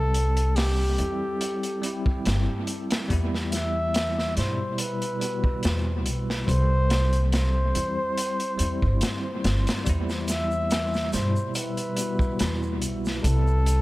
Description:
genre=trip hop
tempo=71 BPM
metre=4/4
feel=swing 54% on 16ths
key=E minor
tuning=A4 = 440 Hz
part: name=trumpet with bucket mute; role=melody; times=0.0-13.8 s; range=G4 to E5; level=-30 LUFS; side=equal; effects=tape echo
part: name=bell-like tine electric piano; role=accompaniment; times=0.0-13.8 s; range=B2 to A4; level=-31 LUFS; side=equal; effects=medium stereo tremolo, tape echo
part: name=upright bass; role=bass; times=0.0-13.8 s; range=G1 to G2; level=-25 LUFS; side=equal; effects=none
part: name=crunchy breakbeat drum kit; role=drums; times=0.1-13.8 s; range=hi-hat, kick drum, snare drum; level=-28 LUFS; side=equal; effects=analog delay
part: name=dark analog pad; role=sustained chords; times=9.9-13.8 s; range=G3 to C5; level=-36 LUFS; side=left 1 dB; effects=chorus
part: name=tube shaker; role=percussion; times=9.9-13.8 s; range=none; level=-40 LUFS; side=right 2 dB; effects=none
room=small room ambience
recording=echo-heavy mix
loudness=-23 LUFS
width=side -18 dB against mid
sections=0.0-13.8 A section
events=none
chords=0.0 C; 3.1 Em; 6.5 C; 9.9 Em; 13.2 C

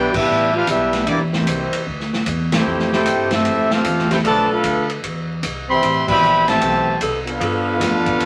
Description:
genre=jazz, big band swing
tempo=152 BPM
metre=4/4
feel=swing 64% on 8ths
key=C major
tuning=A4 = 438 Hz
part: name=warm trumpet section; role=melody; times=0.0-8.3 s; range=A3 to C6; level=-21 LUFS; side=equal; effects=none
part: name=warm trombone section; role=second line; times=0.0-8.3 s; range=B2 to G4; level=-25 LUFS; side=equal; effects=none
part: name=bright saxophone section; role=sustained chords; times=0.0-0.3, 2.7-8.0 s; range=C3 to B4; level=-27 LUFS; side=equal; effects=none
part: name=upright bass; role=bass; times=0.0-8.3 s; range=A1 to G2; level=-28 LUFS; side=equal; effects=none
part: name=swinging big-band drum kit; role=drums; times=0.1-8.3 s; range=crash cymbal, hi-hat, kick drum, ride cymbal, snare drum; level=-25 LUFS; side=equal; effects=none
room=wet club reverb, RT60 0.5 s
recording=vinyl crackle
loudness=-18 LUFS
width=mono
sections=0.0-8.3 A section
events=band accent 0.1, 2.5, 6.0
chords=0.0 Cmaj9; 1.1 C9; 2.7 Fmaj9; 4.2 Bm7b5; 5.0 E5; 5.8 Am9; 7.4 G9

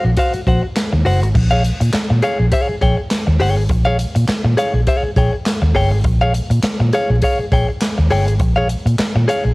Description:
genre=funk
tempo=102 BPM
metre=4/4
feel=swing 56% on 16ths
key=Bb dorian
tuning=A4 = 440 Hz
part: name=direct-recorded clean electric guitar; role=accompaniment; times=0.0-9.5 s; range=Gb4 to G5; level=-19 LUFS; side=left 1 dB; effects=cassette tape
part: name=vintage muted fingered electric bass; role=bass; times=0.0-9.5 s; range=Gb1 to Bb2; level=-15 LUFS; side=equal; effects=none
part: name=swinging big-band drum kit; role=drums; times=0.2-9.4 s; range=crash cymbal, handclaps, hi-hat, kick drum, snare drum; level=-20 LUFS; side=equal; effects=none
room=small room ambience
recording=home recording on cassette, vinyl crackle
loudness=-14 LUFS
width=side -24 dB against mid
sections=0.0-1.3 A section; 1.3-9.5 B section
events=none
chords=0.0 Ab13 (rootless); 1.3 Bbm7

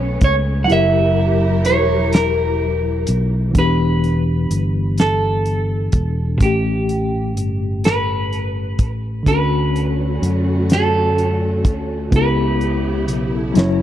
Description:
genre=slow six-eight R&B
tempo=42 BPM (dotted quarters)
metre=6/8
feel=straight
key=unclear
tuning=A4 = 437 Hz
part: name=clean electric guitar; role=melody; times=0.0-13.8 s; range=G4 to F#5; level=-21 LUFS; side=right 2 dB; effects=spring reverb, tape echo
part: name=tine electric piano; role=accompaniment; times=0.0-13.8 s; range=A2 to G#5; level=-22 LUFS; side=left 2 dB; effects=overdrive, fast stereo tremolo
part: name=warm studio string section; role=sustained chords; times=0.0-3.5, 9.3-13.8 s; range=C#3 to A#5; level=-25 LUFS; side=right 1 dB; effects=none
part: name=fingered electric bass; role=bass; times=0.0-13.8 s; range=E1 to F#2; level=-20 LUFS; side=equal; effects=none
part: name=cloth-damped thuddy drum kit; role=drums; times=0.2-13.8 s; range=hi-hat, kick drum, snare drum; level=-16 LUFS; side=equal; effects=none
room=little or no reverb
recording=dry, close 1970s-style studio recording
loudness=-15 LUFS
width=side -11 dB against mid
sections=0.0-3.6 A section; 3.6-13.8 B section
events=kick muted 0.7-3.6; tine electric piano fill 13.6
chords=0.0 Amaj9; 0.7 F#7b9; 3.6 Em7; 6.4 A7; 9.3 Dmaj7; 12.1 C#m7b5

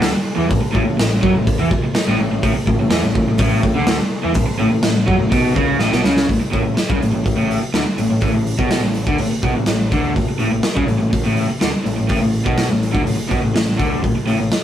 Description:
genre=garage rock duo or trio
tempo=124 BPM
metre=4/4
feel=straight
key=A major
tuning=A4 = 443 Hz
part: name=crunchy overdriven guitar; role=riff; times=0.0-14.5 s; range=A2 to F#3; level=-18 LUFS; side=equal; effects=none
part: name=growling picked electric bass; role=bass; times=0.0-14.5 s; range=A1 to F#2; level=-23 LUFS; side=equal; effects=overdrive
part: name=raw garage drum kit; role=drums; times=0.0-14.6 s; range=hi-hat, kick drum, snare drum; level=-19 LUFS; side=equal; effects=none
room=moderate studio reverb, RT60 0.5 s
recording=rough rehearsal-room recording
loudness=-15 LUFS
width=side -10 dB against mid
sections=0.0-6.3 A section; 6.3-14.6 B section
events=drum fill 5.8-6.3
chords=0.0 A; 6.3 N.C.

